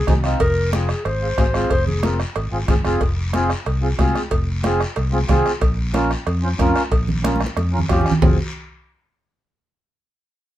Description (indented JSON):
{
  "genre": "latin, cumbia",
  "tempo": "184 BPM",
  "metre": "4/4",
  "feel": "straight",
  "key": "F minor",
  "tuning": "A4 = 442 Hz",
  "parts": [
    { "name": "warm clarinet", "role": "melody", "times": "0.0-2.2 s", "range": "Ab4 to C5", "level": "-23 LUFS", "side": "left 1 dB", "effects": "none" },
    { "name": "mellow accordion", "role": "accompaniment", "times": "0.1-8.4 s", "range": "C4 to C5", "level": "-22 LUFS", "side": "equal", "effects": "none" },
    { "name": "fingered electric bass", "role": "bass", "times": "0.1-8.4 s", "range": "F1 to F2", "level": "-22 LUFS", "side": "equal", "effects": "none" },
    { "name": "bombo", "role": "percussion", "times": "0.1-8.3 s", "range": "none", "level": "-21 LUFS", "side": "equal", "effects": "none" },
    { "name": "congas", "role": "percussion", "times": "0.1-8.3 s", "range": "none", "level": "-24 LUFS", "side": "right 2 dB", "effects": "none" },
    { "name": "cowbell and timbales", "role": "percussion", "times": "0.1-8.3 s", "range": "none", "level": "-28 LUFS", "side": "right 4 dB", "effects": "none" },
    { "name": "guiro", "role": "percussion", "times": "0.1-8.3 s", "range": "none", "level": "-33 LUFS", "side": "left 2 dB", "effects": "none" }
  ],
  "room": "moderate small room ambience, RT60 0.5 s",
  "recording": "minimal, uncompressed stereo recording",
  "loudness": "-17 LUFS",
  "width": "side -13 dB against mid",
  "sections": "0.0-3.0 A section; 3.0-8.2 B section; 8.2-9.5 C section",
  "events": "drum fill 7.2-8.2",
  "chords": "0.4 Fm; 5.6 Bbm; 8.2 Fm",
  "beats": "0.08 | 0.40 0.73 1.05 1.38 | 1.71 2.03 2.36 2.68 | 3.01 3.33 3.66 3.99 | 4.31 4.64 4.96 5.29 | 5.62 5.94 6.27 6.59 | 6.92 7.24 7.57 7.90 | 8.22"
}